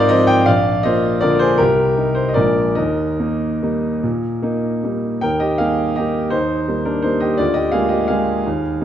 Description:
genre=classical, piano waltz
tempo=139-180 BPM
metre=3/4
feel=rubato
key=Eb major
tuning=A4 = 440 Hz
part: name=clear grand piano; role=solo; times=0.0-8.8 s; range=Bb1 to G5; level=-15 LUFS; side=equal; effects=none
room=moderate recital hall reverb, RT60 1.3 s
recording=dark, warm production, nothing above 10.7 kHz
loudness=-15 LUFS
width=side -10 dB against mid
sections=0.0-5.2 A section; 5.2-8.8 B section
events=none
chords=0.5 Bb; 1.6 Cm; 2.4 Bb7; 2.8 Eb; 7.4 Bb7/D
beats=0.10 | 0.47 0.84 1.21 | 1.58 1.96 2.36 | 2.77 3.20 3.63 | 4.03 4.43 4.84 | 5.23 5.59 5.97 | 6.33 6.68 7.04 | 7.39 7.74 8.09 | 8.45 8.80

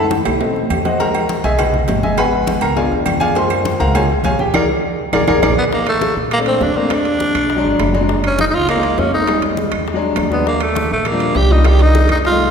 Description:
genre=Afro-Cuban jazz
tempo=203 BPM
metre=4/4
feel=straight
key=unclear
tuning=A4 = 440 Hz
part: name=clear concert grand piano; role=accompaniment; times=0.0-12.5 s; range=Eb3 to C6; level=-18 LUFS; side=left 2 dB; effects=none
part: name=upright bass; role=bass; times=0.0-12.5 s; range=F#1 to Bb2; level=-19 LUFS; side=right 1 dB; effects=none
part: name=congas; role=percussion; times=0.1-12.5 s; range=none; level=-25 LUFS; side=left 2 dB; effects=none
part: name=timbales and agogo bells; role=percussion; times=0.1-12.2 s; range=none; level=-24 LUFS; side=right 3 dB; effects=none
part: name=claves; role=percussion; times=0.3-12.2 s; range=none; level=-29 LUFS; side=right 7 dB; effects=none
part: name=cowbell and bongos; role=percussion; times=1.0-12.5 s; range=none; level=-25 LUFS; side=left 2 dB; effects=none
part: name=growling tenor saxophone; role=melody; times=5.6-12.5 s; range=A3 to G4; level=-17 LUFS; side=right 1 dB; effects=none
room=wet concert hall reverb, RT60 2.4 s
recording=recorded in a church or concert hall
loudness=-13 LUFS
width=side -6 dB against mid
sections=0.0-5.7 A section; 5.7-12.5 B section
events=drum fill 0.0-1.0, 5.0-5.7; grand piano solo 0.0-5.7; band accent 4.5-5.7; grand piano fill 7.7-8.1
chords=0.4 B7b9; 1.0 Emaj9; 2.2 Abm7; 2.8 Db7b9; 3.4 Gbmaj9; 4.5 Bb7; 5.7 Bbmaj9; 6.9 E9; 8.1 Gb6; 9.3 Fm7; 9.9 E9; 10.5 Ebmaj9; 11.7 Cm9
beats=0.11 0.40 0.70 | 0.99 1.29 1.59 1.88 | 2.18 2.47 2.77 3.06 | 3.36 3.65 3.95 4.25 | 4.54 4.84 5.13 5.43 | 5.72 6.02 6.32 6.61 | 6.91 7.21 7.50 7.80 | 8.09 8.39 8.69 8.98 | 9.28 9.58 9.87 10.17 | 10.46 10.76 11.06 11.35 | 11.65 11.95 12.24

